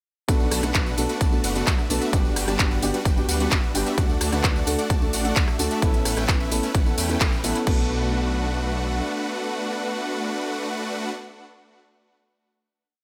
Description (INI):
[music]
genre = EDM, festival progressive house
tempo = 130 BPM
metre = 4/4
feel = straight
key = B minor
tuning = A4 = 440 Hz
[part]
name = dark concert grand piano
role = accompaniment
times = 0.3-11.1 s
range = A3 to B4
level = -31 LUFS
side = equal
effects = sidechain pumping, digital delay
[part]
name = supersaw chords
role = riff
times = 0.3-11.1 s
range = G3 to A5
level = -30 LUFS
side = equal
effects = sidechain pumping, digital delay
[part]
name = detuned saw bass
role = bass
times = 0.3-9.0 s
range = F#1 to E2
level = -31 LUFS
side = equal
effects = chorus, sidechain pumping
[part]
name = electronic kick drum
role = drums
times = 0.3-7.8 s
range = none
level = -24 LUFS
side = equal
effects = none
[part]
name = house drum kit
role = drums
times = 0.3-7.8 s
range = crash cymbal, handclaps, hi-hat, ride cymbal, rim click, tambourine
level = -30 LUFS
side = equal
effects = none
[sound]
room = light reverb, digital ambience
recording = none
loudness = -23 LUFS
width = mono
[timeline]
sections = 0.3-7.7 drop; 7.7-11.4 final chord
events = drop 0.3-7.7; band accent 7.2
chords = 0.3 Bm7; 2.1 Gmaj7; 4.0 D; 5.8 Aadd9; 7.7 Bm7